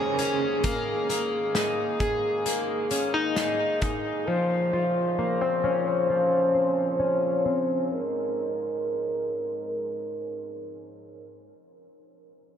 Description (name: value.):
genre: dream pop.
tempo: 66 BPM.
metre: 4/4.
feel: straight.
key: Ab major.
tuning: A4 = 441 Hz.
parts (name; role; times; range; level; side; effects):
crunchy overdriven guitar; accompaniment; 0.0-1.2 s; Db4 to Bb4; -37 LUFS; right 5 dB; tremolo, analog chorus, low-pass filter.
warm brass ensemble; sustained chords; 0.0-11.5 s; Eb2 to C5; -27 LUFS; equal; stereo widening, low-pass filter.
picked plugged-in twelve-string acoustic guitar; arpeggios; 0.0-8.0 s; F3 to Ab4; -27 LUFS; left 2 dB; lush chorus, low-pass filter, digital delay.
loose indie drum kit; drums; 0.2-4.0 s; hi-hat, kick drum, snare drum; -31 LUFS; equal; none.
room: moderate huge ambient reverb, RT60 8.4 s.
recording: none.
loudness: -24 LUFS.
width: side -8 dB against mid.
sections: 0.0-11.5 A section.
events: filter sweep 0.0-11.5.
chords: 0.0 Eb7sus4; 0.6 Absus2; 4.3 Bbmadd9; 7.9 Absus2.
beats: | 0.64 1.55 2.46 3.37 | 4.28 5.18 6.09 7.00 | 7.91 8.82 9.73 10.64.